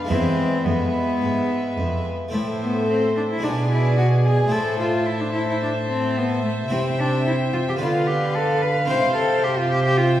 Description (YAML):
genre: classical, baroque-style concerto movement with solo episodes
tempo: 110 BPM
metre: 4/4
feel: straight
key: A minor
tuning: A4 = 440 Hz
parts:
  - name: warm studio violin section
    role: melody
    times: 0.0-10.2 s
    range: E5 to A5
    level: -32 LUFS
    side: left 1 dB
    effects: none
  - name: rich chamber violin section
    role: second line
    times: 0.0-10.2 s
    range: B4 to F5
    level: -29 LUFS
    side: equal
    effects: none
  - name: harpsichord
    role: accompaniment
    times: 0.0-10.2 s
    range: E2 to F4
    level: -28 LUFS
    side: equal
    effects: none
  - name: dark chamber cello section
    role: bass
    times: 0.0-10.2 s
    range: E2 to D3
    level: -24 LUFS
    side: right 2 dB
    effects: none
  - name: rich cello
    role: melody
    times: 0.1-10.2 s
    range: A3 to C5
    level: -23 LUFS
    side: left 1 dB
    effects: none
  - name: warm chamber viola section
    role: accompaniment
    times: 0.1-10.2 s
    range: G#3 to C5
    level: -28 LUFS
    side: left 1 dB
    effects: none
room: wet recital hall reverb, RT60 1.3 s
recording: heard from further back in the room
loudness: -19 LUFS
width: side -12 dB against mid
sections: 0.0-2.3 A section; 2.3-10.2 A section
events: none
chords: 0.1 E; 2.3 Am; 3.4 G#dim/B; 4.5 Am; 6.7 C; 7.8 Bdim/D; 8.9 C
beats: | 0.10 0.66 1.22 1.77 | 2.33 2.88 3.43 3.97 | 4.52 5.07 5.62 6.17 | 6.71 7.26 7.81 8.35 | 8.90 9.44 9.99